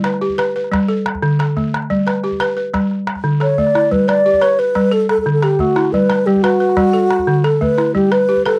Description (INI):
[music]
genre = west african traditional, West African string and xylophone music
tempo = 119 BPM (dotted quarters)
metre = 12/8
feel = straight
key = G lydian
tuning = A4 = 440 Hz
[part]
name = balafon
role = arpeggios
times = 0.0-8.6 s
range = D3 to B4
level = -19 LUFS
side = equal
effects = none
[part]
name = calabash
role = percussion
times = 0.0-8.5 s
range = none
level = -26 LUFS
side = equal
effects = none
[part]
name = wooden-headed alto flute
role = melody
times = 3.4-8.6 s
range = F#4 to D5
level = -16 LUFS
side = equal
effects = none
[sound]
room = light reverb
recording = dry, close 1970s-style studio recording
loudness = -15 LUFS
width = mono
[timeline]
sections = 0.0-8.6 A section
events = none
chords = 0.0 G; 0.9 D5; 1.9 G; 2.9 D5; 3.9 G; 4.9 D; 5.9 G; 6.9 D; 8.0 G